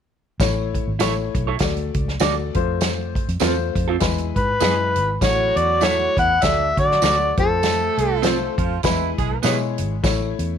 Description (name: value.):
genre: uptempo 1960s-style soul.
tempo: 100 BPM.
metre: 4/4.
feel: swing 58% on 8ths.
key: A major.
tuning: A4 = 440 Hz.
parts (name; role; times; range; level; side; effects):
warm grand piano; accompaniment; 0.4-10.5 s; G3 to D5; -26 LUFS; left 14 dB; none.
vintage muted fingered electric bass; bass; 0.4-10.6 s; G#1 to D3; -25 LUFS; right 1 dB; none.
natural country drum kit; drums; 0.4-10.5 s; hi-hat, kick drum, snare drum; -24 LUFS; right 1 dB; none.
tambourine; percussion; 0.4-10.2 s; none; -32 LUFS; right 18 dB; none.
electric guitar through a small old amp; stabs; 1.0-9.6 s; B3 to D5; -26 LUFS; right 14 dB; none.
overdriven harmonica; melody; 4.4-8.2 s; A4 to F#5; -19 LUFS; left 2 dB; none.
warm horn section; second line; 5.2-9.4 s; D3 to A4; -26 LUFS; right 14 dB; none.
room: small room ambience.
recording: 1960s-style stereo with parts hard left and right.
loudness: -18 LUFS.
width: side -8 dB against mid.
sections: 0.4-5.2 A section; 5.2-10.6 B section.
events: none.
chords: 0.4 A; 1.6 D; 2.5 F; 4.0 E; 5.2 A; 6.4 D; 7.3 F; 8.8 E; 10.0 A.